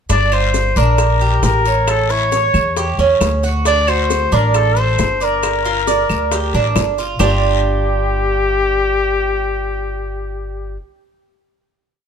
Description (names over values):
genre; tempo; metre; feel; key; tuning
latin, Cuban son and guajira; 135 BPM; 4/4; straight; G minor; A4 = 440 Hz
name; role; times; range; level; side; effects
warm trumpet; melody; 0.1-10.8 s; G4 to D5; -18 LUFS; left 4 dB; none
Cuban tres; arpeggios; 0.1-10.8 s; G3 to D5; -19 LUFS; right 6 dB; none
upright bass; bass; 0.1-10.8 s; G1 to E2; -18 LUFS; equal; none
bongos; percussion; 0.1-7.3 s; none; -25 LUFS; left 9 dB; none
guiro; percussion; 0.1-7.3 s; none; -30 LUFS; left 7 dB; none
maracas; percussion; 0.1-7.3 s; none; -29 LUFS; right 4 dB; none
claves; percussion; 0.3-7.3 s; none; -28 LUFS; right 4 dB; none
room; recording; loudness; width
light reverb; none; -13 LUFS; side -7 dB against mid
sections
0.1-7.2 A section; 7.2-10.7 final chord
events
none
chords
0.1 Gm7; 1.9 A; 3.7 D7; 5.4 Gm7; 7.2 G5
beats
| 0.10 0.54 0.98 1.43 | 1.88 2.32 2.77 3.21 | 3.65 4.10 4.54 4.99 | 5.43 5.87 6.32 6.76 | 7.20 7.64 8.09 8.53 | 8.97 9.42 9.86 10.30